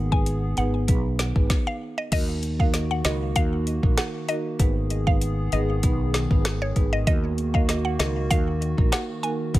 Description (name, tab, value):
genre	dancehall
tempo	97 BPM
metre	4/4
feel	straight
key	Eb minor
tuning	A4 = 439 Hz
part	hollow soft pad	sustained chords	0.0-9.6 s	Eb3 to Ab4	-33 LUFS	left 3 dB	chorus, sidechain pumping
part	mellow fretless electric bass	bass	0.0-9.6 s	Ab1 to Eb2	-26 LUFS	equal	lush chorus
part	mallet-like synth pluck	melody	0.1-9.3 s	Db5 to Ab5	-30 LUFS	left 1 dB	chorus, digital delay
part	marimba with medium mallets	accompaniment	0.1-9.6 s	Bb3 to Cb5	-30 LUFS	right 4 dB	none
part	afro-pop drum kit	drums	0.1-9.6 s	crash cymbal, hi-hat, kick drum, rim click, snare drum	-23 LUFS	equal	none
room	little or no reverb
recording	none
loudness	-21 LUFS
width	side -16 dB against mid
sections	0.0-2.1 A section; 2.1-9.6 A section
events	stop 1.5-2.1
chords	0.0 Abm; 2.1 Ebm; 4.6 Abm; 7.1 Ebm